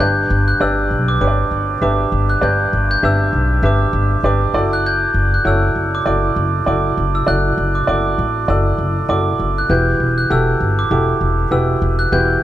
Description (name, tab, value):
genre	piano-driven pop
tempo	99 BPM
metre	4/4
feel	swing 56% on 16ths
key	unclear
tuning	A4 = 444 Hz
part	glockenspiel with soft plastic mallets	melody	0.0-12.4 s	D6 to G6	-19 LUFS	right 1 dB	none
part	clear upright piano	accompaniment	0.0-12.4 s	G2 to E5	-19 LUFS	equal	none
part	upright bass	bass	0.0-12.4 s	E1 to B1	-18 LUFS	equal	none
room	light reverb, small room reverb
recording	none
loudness	-14 LUFS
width	side -13 dB against mid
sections	0.0-12.4 A section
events	none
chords	0.0 G; 4.5 Dadd9/F#; 9.7 Emadd9